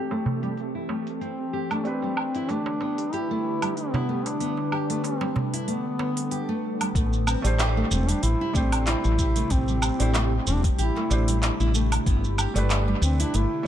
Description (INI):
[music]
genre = organic downtempo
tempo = 94 BPM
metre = 4/4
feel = swing 55% on 16ths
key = A minor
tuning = A4 = 442 Hz
[part]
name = felt-muted upright piano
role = accompaniment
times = 0.0-13.7 s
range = A3 to C5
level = -34 LUFS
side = right 3 dB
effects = sidechain pumping, analog delay
[part]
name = ethereal airy pad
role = sustained chords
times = 0.0-13.7 s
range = B2 to B4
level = -32 LUFS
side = equal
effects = ensemble chorus, built-in reverb, sidechain pumping
[part]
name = nylon-string guitar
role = arpeggios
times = 0.0-13.5 s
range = G3 to G4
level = -31 LUFS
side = equal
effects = dub echo
[part]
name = darbuka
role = percussion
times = 0.1-6.9 s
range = none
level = -30 LUFS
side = right 2 dB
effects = none
[part]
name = organic electronic drum kit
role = drums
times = 0.4-13.5 s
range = handclaps, hi-hat, shaker, woodblock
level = -30 LUFS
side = right 2 dB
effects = analog delay
[part]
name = mellow duduk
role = melody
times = 1.2-13.7 s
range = B3 to E4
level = -30 LUFS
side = equal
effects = dub echo
[part]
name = woody fretless electric bass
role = bass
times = 7.0-13.4 s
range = E1 to D2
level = -23 LUFS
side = equal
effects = sidechain pumping
[part]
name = electronic kick drum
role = drums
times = 7.0-12.2 s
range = none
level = -25 LUFS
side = equal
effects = none
[sound]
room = light reverb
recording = echo-heavy mix, low-pass filter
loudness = -22 LUFS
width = side -11 dB against mid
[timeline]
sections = 0.0-7.0 A section; 7.0-13.7 B section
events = filter sweep 0.0-7.0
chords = 0.0 Am7; 1.9 G; 7.0 Am7; 12.1 G